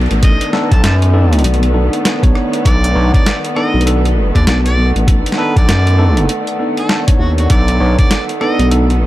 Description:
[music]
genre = glitch hop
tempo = 99 BPM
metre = 4/4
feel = swing 60% on 16ths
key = unclear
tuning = A4 = 440 Hz
[part]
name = clear studio string section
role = sustained chords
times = 0.0-9.1 s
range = D#3 to B3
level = -24 LUFS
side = right 2 dB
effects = sidechain pumping
[part]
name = vowel-sweep wobble bass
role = bass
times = 0.0-9.1 s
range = A1 to D#2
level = -13 LUFS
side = equal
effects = chorus, tube saturation
[part]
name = boom bap sampler-style drum kit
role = drums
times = 0.0-9.0 s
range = hi-hat, rim click, snare drum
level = -19 LUFS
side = equal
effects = overdrive
[part]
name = downlifter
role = sound effects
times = 0.0-2.7 s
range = none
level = -32 LUFS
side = equal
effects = none
[part]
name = warbly tape-like pad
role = texture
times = 0.0-9.1 s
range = A4 to F#5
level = -23 LUFS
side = equal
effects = chorus, built-in reverb, sidechain pumping
[part]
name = warm harmonica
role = melody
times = 0.2-8.7 s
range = F#4 to A5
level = -22 LUFS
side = equal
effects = tape echo
[part]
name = tine electric piano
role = stabs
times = 0.2-8.9 s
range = B3 to C#5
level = -19 LUFS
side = equal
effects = vintage 12-bit sampler grit, sidechain pumping, tape echo
[part]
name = electronic kick drum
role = drums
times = 0.2-8.1 s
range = none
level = -12 LUFS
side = equal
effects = overdrive
[part]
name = gritty driven synth bass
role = bass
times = 0.7-8.0 s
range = B1 to F#2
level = -12 LUFS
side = equal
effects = overdrive
[sound]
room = little or no reverb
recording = none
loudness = -10 LUFS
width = side -15 dB against mid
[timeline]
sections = 0.0-9.1 A section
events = none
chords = 0.0 B7#9

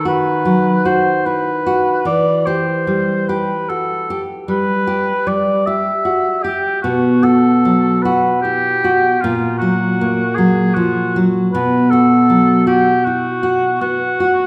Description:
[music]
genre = romantic duo for oboe and classical guitar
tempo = 51 BPM (dotted quarters)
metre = 12/8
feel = rubato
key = E minor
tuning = A4 = 439 Hz
[part]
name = mellow oboe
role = melody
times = 0.0-14.5 s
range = F4 to E5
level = -21 LUFS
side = equal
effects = none
[part]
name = nylon-string guitar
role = accompaniment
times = 0.0-14.5 s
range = A#2 to G4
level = -17 LUFS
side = equal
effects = none
[sound]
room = wet recital hall reverb, RT60 1.8 s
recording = none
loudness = -16 LUFS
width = mono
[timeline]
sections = 0.0-14.5 A section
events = none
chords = 0.0 B/D#; 2.1 Em; 6.8 B5; 9.2 F#/A#; 11.5 B5

